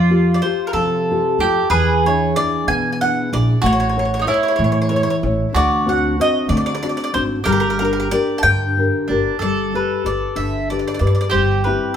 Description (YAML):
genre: italian folk, Italian serenade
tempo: 62 BPM (dotted quarters)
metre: 6/8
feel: straight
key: unclear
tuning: A4 = 439 Hz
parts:
  - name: mandolin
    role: melody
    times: 0.0-12.0 s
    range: A4 to A5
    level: -21 LUFS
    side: equal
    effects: none
  - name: mandolin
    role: second line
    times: 0.0-12.0 s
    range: D4 to A4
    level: -22 LUFS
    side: right 3 dB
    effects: none
  - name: nylon-string guitar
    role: accompaniment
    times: 0.0-12.0 s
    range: B2 to C#5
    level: -20 LUFS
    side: left 2 dB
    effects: none
  - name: upright bass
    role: bass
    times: 0.0-11.7 s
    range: G1 to F3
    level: -22 LUFS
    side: right 1 dB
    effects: none
room: wet large studio reverb, RT60 1.0 s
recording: band playing live in one room, faint mains hum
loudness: -15 LUFS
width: side -8 dB against mid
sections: 0.0-9.4 A section; 9.4-12.0 B section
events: none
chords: 0.0 Fadd9; 1.7 E7; 3.6 A; 5.5 D7; 7.5 Gm; 9.4 Gadd9; 11.3 C/G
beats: 0.73 | 1.70 2.67 | 3.63 4.58 | 5.54 6.50 | 7.46 8.43 | 9.40 10.36 | 11.31